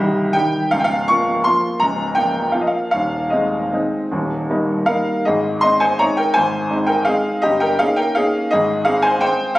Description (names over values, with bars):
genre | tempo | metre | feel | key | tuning
classical, piano waltz | 144-180 BPM | 3/4 | rubato | Ab major | A4 = 440 Hz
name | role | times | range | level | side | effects
clear upright piano | solo | 0.0-9.6 s | C1 to Db6 | -15 LUFS | equal | none
room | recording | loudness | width
moderate recital hall reverb, RT60 1.5 s | recorded on a phone in the room, club reverb, compression | -15 LUFS | side -17 dB against mid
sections
0.0-5.3 A section; 5.3-9.6 A section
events
none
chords
0.0 Cm; 0.7 Bbm/Db; 2.9 Ab/Eb; 4.1 Eb; 5.3 Ab; 7.4 Eb7/G; 8.5 Ab